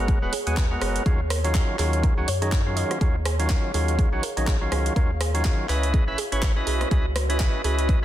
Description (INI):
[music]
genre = deep house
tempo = 123 BPM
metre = 4/4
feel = swing 58% on 16ths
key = unclear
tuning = A4 = 440 Hz
[part]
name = overdriven tonewheel organ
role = stabs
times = 0.0-8.0 s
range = D#3 to E5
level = -28 LUFS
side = equal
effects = sidechain pumping, tape echo
[part]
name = round analog bass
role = bass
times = 0.0-8.0 s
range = D#1 to F#2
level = -26 LUFS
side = equal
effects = sidechain pumping
[part]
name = ethereal airy pad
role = texture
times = 0.0-8.0 s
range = F#4 to F#5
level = -34 LUFS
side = right 1 dB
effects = ensemble chorus, built-in reverb, sidechain pumping
[part]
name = soft round pluck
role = arpeggios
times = 0.1-7.9 s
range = F#4 to D#5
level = -35 LUFS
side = right 4 dB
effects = chorus, sidechain pumping, tape echo
[part]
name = electronic kick drum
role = drums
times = 0.1-8.0 s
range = none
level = -22 LUFS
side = equal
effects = none
[part]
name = house drum kit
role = drums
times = 0.1-8.0 s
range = handclaps, hi-hat, rim click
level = -30 LUFS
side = right 1 dB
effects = none
[sound]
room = light reverb, digital ambience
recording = dense, heavily limited modern master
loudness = -21 LUFS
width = side -12 dB against mid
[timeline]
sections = 0.0-8.0 A section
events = none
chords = 0.0 G#m9; 1.1 D#m9; 5.7 C#m9